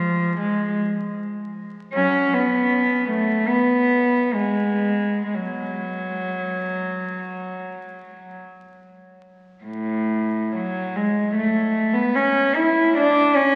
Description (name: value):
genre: classical, free, expressive piece for unaccompanied cello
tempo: 39-80 BPM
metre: 4/4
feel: rubato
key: F# minor, A major from 9.6 s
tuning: A4 = 440 Hz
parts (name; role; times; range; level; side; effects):
- warm cello; solo; 0.0-13.6 s; A2 to E4; -22 LUFS; equal; none
room: wet cathedral reverb, RT60 4.6 s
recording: very old 78 rpm record, vinyl crackle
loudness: -22 LUFS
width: mono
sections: 0.0-9.6 A section; 9.6-13.6 B section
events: none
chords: none